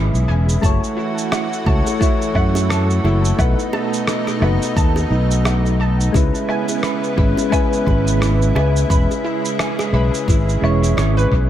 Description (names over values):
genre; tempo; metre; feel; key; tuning
sunset chillout; 87 BPM; 4/4; swing 57% on 16ths; F# dorian; A4 = 440 Hz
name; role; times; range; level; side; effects
soft electric-piano-like synth keys; accompaniment; 0.0-11.5 s; G#3 to C#5; -21 LUFS; moving between left 6 dB and right 6 dB; chorus, tremolo, auto-pan, analog delay
lush unison pad; sustained chords; 0.0-11.5 s; B2 to F#4; -25 LUFS; equal; chorus
soft round pluck; arpeggios; 0.0-11.3 s; D#4 to B5; -28 LUFS; right 2 dB; ensemble chorus, analog delay
fretless electric bass; bass; 0.0-11.5 s; E1 to F#2; -17 LUFS; equal; none
electronic shaker, rim click and woodblock; drums; 0.1-11.3 s; none; -26 LUFS; right 1 dB; tape echo
electronic kick drum; drums; 0.6-11.5 s; none; -18 LUFS; equal; none
bongos; percussion; 0.6-11.1 s; none; -33 LUFS; right 3 dB; none
room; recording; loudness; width
light reverb, digital ambience; echo-heavy mix; -15 LUFS; side -11 dB against mid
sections
0.0-11.5 A section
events
none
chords
0.0 E6; 0.6 F#m7; 3.4 B7; 6.1 C#m7; 8.9 E6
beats
| 0.63 1.32 2.01 2.70 | 3.38 4.08 4.76 5.45 | 6.14 6.83 7.52 8.21 | 8.90 9.59 10.28 10.97